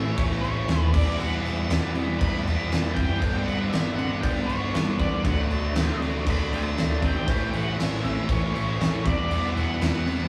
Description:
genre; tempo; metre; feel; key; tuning
quiet-loud alternative rock; 118 BPM; 4/4; straight; E dorian; A4 = 441 Hz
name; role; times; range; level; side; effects
octave-fuzz lead guitar; melody; 0.0-10.3 s; C#5 to B5; -35 LUFS; equal; distortion
distorted electric guitar; riff; 0.0-10.3 s; G2 to E4; -33 LUFS; equal; distortion
distorted electric guitar; riff; 0.0-10.3 s; G2 to E4; -36 LUFS; equal; overdrive
overdriven picked electric bass; bass; 0.0-10.3 s; E1 to E2; -30 LUFS; equal; none
oversized low-tuned drum kit; drums; 0.2-10.2 s; crash cymbal, kick drum, snare drum; -29 LUFS; equal; none
room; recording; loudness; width
wet stone room reverb, RT60 1.1 s; rough rehearsal-room recording, tube saturation, small room reverb; -25 LUFS; mono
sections
0.0-10.3 A section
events
none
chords
0.0 A; 0.9 Em; 3.2 G; 5.3 D; 7.3 A; 9.1 Emadd9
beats
0.19 0.69 | 1.20 1.71 2.21 2.72 | 3.23 3.73 4.24 4.75 | 5.25 5.76 6.27 6.78 | 7.28 7.79 8.30 8.81 | 9.31 9.82

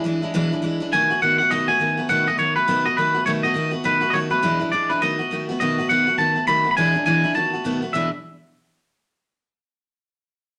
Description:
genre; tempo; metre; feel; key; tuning
rock; 206 BPM; 4/4; swing 60% on 8ths; E major; A4 = 441 Hz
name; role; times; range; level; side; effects
picked steel-string acoustic guitar; accompaniment; 0.0-8.1 s; E2 to F#4; -25 LUFS; equal; none
twangy electric guitar; melody; 0.9-8.1 s; B4 to B5; -22 LUFS; equal; none
room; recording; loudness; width
moderate studio reverb, RT60 0.8 s; none; -20 LUFS; mono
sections
0.0-5.6 A section; 5.6-7.9 B section; 7.9-9.1 C section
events
none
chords
0.0 E7; 0.9 B7; 4.4 E7; 5.0 B7; 6.8 E7; 7.4 B7; 7.9 E7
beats
0.05 0.34 0.64 | 0.93 1.22 1.51 1.80 | 2.10 2.39 2.68 2.97 | 3.27 3.56 3.85 4.14 | 4.43 4.73 5.02 5.31 | 5.60 5.89 6.18 6.48 | 6.77 7.06 7.35 7.64 | 7.94

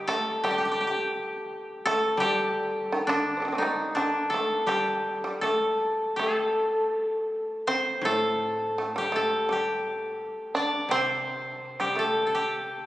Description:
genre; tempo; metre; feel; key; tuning
japanese traditional, Japanese chamber music; 84 BPM; 4/4; rubato; unclear; A4 = 439 Hz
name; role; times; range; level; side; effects
koto; melody; 0.0-12.9 s; D4 to D5; -26 LUFS; left 1 dB; none
shamisen; second line; 0.0-12.6 s; D3 to C5; -31 LUFS; right 2 dB; none
koto; accompaniment; 0.0-12.9 s; A2 to G3; -39 LUFS; left 1 dB; none
room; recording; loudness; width
wet church reverb, RT60 2.9 s; recorded on a phone in the room, studio reverb, compression; -24 LUFS; side -15 dB against mid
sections
0.0-12.9 A section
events
none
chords
none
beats
0.41 | 1.13 1.84 2.56 3.25 | 3.97 4.69 5.42 6.17 | 6.93 7.68 8.42 9.15 | 9.86 10.57 11.27 11.97 | 12.67

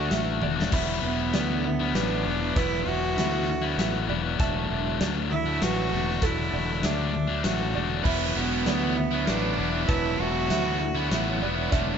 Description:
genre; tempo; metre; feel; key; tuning
post-rock; 98 BPM; 3/4; straight; unclear; A4 = 439 Hz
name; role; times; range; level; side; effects
bright cello; melody; 0.0-11.4 s; B3 to F#4; -30 LUFS; right 3 dB; analog delay
pedal steel guitar; sustained chords; 0.0-12.0 s; F#4 to B5; -40 LUFS; right 3 dB; wide subtle chorus
felt-muted upright piano; arpeggios; 0.0-12.0 s; A4 to E5; -34 LUFS; right 12 dB; analog delay
thick fuzz guitar; riff; 0.0-12.0 s; D3 to F#4; -29 LUFS; left 9 dB; distortion
fuzz fingered electric bass; bass; 0.0-12.0 s; E1 to D2; -30 LUFS; equal; overdrive
big rock drum kit; drums; 0.1-11.9 s; crash cymbal, hi-hat, kick drum, snare drum, toms; -30 LUFS; equal; none
raw garage guitar; riff; 8.0-12.0 s; D3 to E4; -32 LUFS; right 15 dB; overdrive
room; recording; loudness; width
light reverb, small room ambience; nothing above 7.8 kHz; -23 LUFS; side -7 dB against mid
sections
0.0-12.0 A section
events
drum fill 0.4-0.7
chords
0.0 Dadd9/E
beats
0.12 | 0.73 1.34 1.95 | 2.56 3.17 3.79 | 4.40 5.01 5.62 | 6.23 6.84 7.45 | 8.06 8.67 9.28 | 9.89 10.50 11.11 | 11.72

